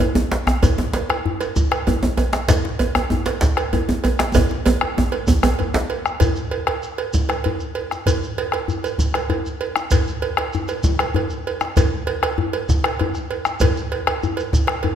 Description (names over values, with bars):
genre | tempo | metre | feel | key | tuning
west african traditional, West African drum ensemble | 129 BPM (dotted quarters) | 12/8 | straight | none | none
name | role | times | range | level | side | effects
cowbell | percussion | 0.0-15.0 s | none | -25 LUFS | right 8 dB | none
djembe | percussion | 0.0-5.9 s | none | -20 LUFS | right 1 dB | none
djembe | percussion | 0.2-15.0 s | none | -24 LUFS | left 4 dB | none
bombo | percussion | 0.3-14.8 s | none | -22 LUFS | equal | none
shekere | percussion | 0.5-14.7 s | none | -31 LUFS | right 1 dB | none
room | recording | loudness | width
wet recital hall reverb, RT60 1.6 s | none | -18 LUFS | side -9 dB against mid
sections
0.0-6.2 A section; 6.2-15.0 B section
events
drum fill 4.4-6.2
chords
none